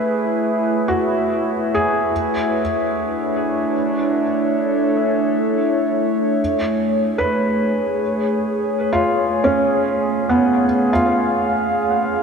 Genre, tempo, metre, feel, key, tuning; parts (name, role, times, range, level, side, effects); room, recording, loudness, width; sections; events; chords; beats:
ambient; free time; A4 = 440 Hz
warbly tape-like pad; sustained chords; 0.0-12.2 s; A3 to E#5; -19 LUFS; equal; chorus, built-in reverb, phaser
felt-muted upright piano; arpeggios; 0.0-12.2 s; B3 to B4; -20 LUFS; equal; diffuse ambient delay
glass harmonica; texture; 0.0-6.4 s; E5; -26 LUFS; left 1 dB; stereo widening
wet cathedral reverb, RT60 6.2 s; in a vast, echoing space; -16 LUFS; side -6 dB against mid
0.0-6.4 A section; 6.4-12.2 B section
0.0 Amaj9; 2.1 Dmaj7; 6.4 C#
free time